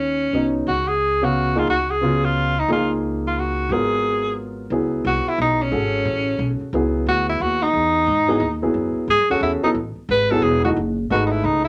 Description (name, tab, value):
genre	modal jazz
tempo	178 BPM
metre	3/4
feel	swing 63% on 8ths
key	C# minor from 4.7 s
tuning	A4 = 440 Hz
part	breathy tenor saxophone	melody	0.0-11.7 s	C#4 to B4	-22 LUFS	equal	none
part	upright bass	bass	0.0-11.7 s	E1 to G#2	-29 LUFS	equal	none
part	dark baby grand piano	accompaniment	0.3-11.6 s	C#3 to E#5	-24 LUFS	equal	none
room	moderate club reverb, RT60 0.5 s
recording	none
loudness	-20 LUFS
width	mono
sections	0.0-4.7 A section; 4.7-11.7 B section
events	none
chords	0.0 G#7sus4 (rootless); 0.7 C#9sus4; 4.7 C#m11; 8.7 F#m11